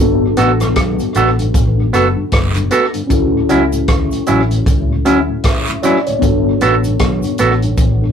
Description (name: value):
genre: lovers rock reggae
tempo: 77 BPM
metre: 4/4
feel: swing 59% on 16ths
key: unclear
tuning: A4 = 443 Hz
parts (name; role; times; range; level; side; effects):
- mellow tine electric piano; accompaniment; 0.0-8.1 s; B3 to E5; -18 LUFS; left 3 dB; medium stereo tremolo
- vintage muted fingered electric bass; bass; 0.0-8.1 s; F#1 to D2; -17 LUFS; equal; none
- mellow tonewheel organ; accompaniment; 0.2-8.1 s; D2 to F#4; -24 LUFS; left 1 dB; overdrive, chorus vibrato, slow rotary speaker, tape echo
- semi-hollow electric guitar; stabs; 0.4-7.5 s; F#3 to A4; -13 LUFS; right 2 dB; none
- vintage drum kit; drums; 0.4-8.0 s; hi-hat, kick drum, rim click; -17 LUFS; equal; none
- cabasa and guiro; percussion; 0.4-8.0 s; none; -27 LUFS; right 2 dB; none
room: moderate small room ambience, RT60 0.5 s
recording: rough rehearsal-room recording, warm saturation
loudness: -12 LUFS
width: side -7 dB against mid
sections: 0.0-8.1 A section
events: none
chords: 0.0 Gmaj9; 3.1 Dmaj9; 6.2 Gmaj9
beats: 0.76 1.54 2.32 | 3.10 3.88 4.66 5.44 | 6.22 7.00 7.78